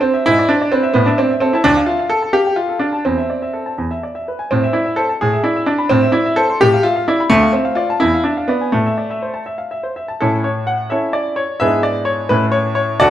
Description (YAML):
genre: classical-period piano sonatina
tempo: 85 BPM (dotted quarters)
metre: 6/8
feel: rubato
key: A minor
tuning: A4 = 440 Hz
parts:
  - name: clear baby grand piano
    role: solo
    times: 0.0-13.1 s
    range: D2 to C6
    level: -14 LUFS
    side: equal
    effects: none
room: moderate recital hall reverb, RT60 1.4 s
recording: none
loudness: -14 LUFS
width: side -11 dB against mid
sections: 0.0-10.2 A section; 10.2-13.1 A section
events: none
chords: 0.3 E7/G#; 1.0 A5; 1.7 Dm; 3.1 Am/E; 3.8 E; 4.5 Am; 5.2 E5/A; 5.9 Am; 6.6 Bm7b5/A; 7.3 Dm; 8.0 E7b9; 8.7 Am; 10.2 A; 11.6 E7/G#; 12.3 A